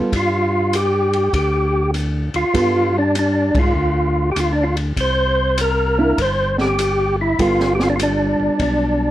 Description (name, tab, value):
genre	soul jazz organ trio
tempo	99 BPM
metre	4/4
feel	swing 66% on 8ths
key	G mixolydian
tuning	A4 = 440 Hz
part	hollow-body jazz guitar	accompaniment	0.0-9.1 s	G3 to A4	-21 LUFS	right 2 dB	none
part	tonewheel organ	bass	0.0-9.1 s	G1 to Ab2	-21 LUFS	equal	overdrive
part	open jazz drum kit	drums	0.1-8.8 s	hi-hat, kick drum, ride cymbal, snare drum	-26 LUFS	equal	none
part	percussive tonewheel organ	melody	0.2-9.1 s	D4 to C5	-18 LUFS	equal	chorus vibrato, fast rotary speaker
room	light reverb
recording	worn, warbling old tape, cassette tape, warbly pitch drift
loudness	-15 LUFS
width	side -13 dB against mid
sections	0.0-9.1 A section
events	band accent 3.5-3.8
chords	0.0 G7(no3); 5.0 C7(no3); 7.4 G9